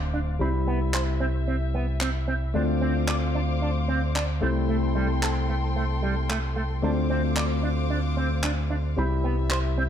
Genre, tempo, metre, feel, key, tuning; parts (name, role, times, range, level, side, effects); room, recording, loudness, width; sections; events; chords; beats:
nu-disco, nu disco; 112 BPM; 4/4; swing 54% on 16ths; D dorian; A4 = 441 Hz
dark baby grand piano; accompaniment; 0.0-9.9 s; G3 to B5; -29 LUFS; left 4 dB; low-pass filter, ping-pong delay
rich studio string section; sustained chords; 0.0-9.9 s; A4 to D6; -35 LUFS; left 3 dB; low-pass filter
fingered electric bass with an envelope filter; bass; 0.0-9.9 s; C2 to D2; -26 LUFS; equal; tube saturation
electric guitar with an envelope filter; riff; 0.1-9.8 s; G3 to D5; -31 LUFS; right 4 dB; lush chorus, low-pass filter, ping-pong delay
handclaps; drums; 0.9-9.6 s; -31 LUFS; equal; small room reverb
light reverb, studio reverb; dark, warm production; -23 LUFS; side -9 dB against mid
0.0-9.9 A section
filter sweep on string section 0.0-9.9
0.4 Cmaj7; 2.5 Dm7; 4.4 Am7/C; 6.8 Dm7; 9.0 Cmaj7
| 0.40 0.94 1.48 2.01 | 2.55 3.08 3.62 4.15 | 4.69 5.22 5.76 6.30 | 6.83 7.37 7.90 8.44 | 8.97 9.51